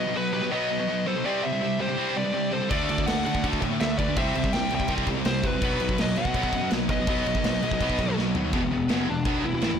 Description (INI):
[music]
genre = heavy metal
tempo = 165 BPM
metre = 4/4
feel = straight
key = E minor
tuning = A4 = 441 Hz
[part]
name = high-gain lead guitar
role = melody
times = 0.0-9.8 s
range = B3 to G5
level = -29 LUFS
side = left 1 dB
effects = distortion
[part]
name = nasal lead guitar with a parked wah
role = second line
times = 0.0-8.1 s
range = F#4 to E5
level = -38 LUFS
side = right 3 dB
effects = overdrive
[part]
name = lush unison pad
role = sustained chords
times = 0.0-9.8 s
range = C3 to G5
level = -41 LUFS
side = equal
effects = none
[part]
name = distorted electric guitar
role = riff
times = 0.0-9.8 s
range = E2 to D4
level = -31 LUFS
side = right 14 dB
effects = overdrive
[part]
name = heavy high-gain guitar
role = riff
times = 0.0-9.8 s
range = E2 to D4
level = -31 LUFS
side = left 14 dB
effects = distortion
[part]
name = high-gain distorted guitar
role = riff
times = 0.0-9.8 s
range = E2 to D4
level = -34 LUFS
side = equal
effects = distortion
[part]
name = fuzz picked electric bass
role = bass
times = 2.7-9.8 s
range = E1 to D3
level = -31 LUFS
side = equal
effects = overdrive
[part]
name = big rock drum kit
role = drums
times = 2.7-9.7 s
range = china cymbal, crash cymbal, kick drum, snare drum, toms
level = -28 LUFS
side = right 1 dB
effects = none
[sound]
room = little or no reverb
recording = blown-out, overdriven recording, overdrive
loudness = -23 LUFS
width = side -8 dB against mid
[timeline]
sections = 0.0-8.5 A section; 8.5-9.8 B section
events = drum fill 8.2-8.5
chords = 0.0 B; 1.3 C; 2.7 D; 4.2 C; 5.6 B; 8.5 Em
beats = 0.15 0.52 0.89 | 1.25 1.62 1.98 2.35 | 2.71 3.08 3.44 3.81 | 4.17 4.54 4.90 5.26 | 5.63 5.99 6.36 6.72 | 7.08 7.45 7.81 8.17 | 8.54 8.90 9.27 9.63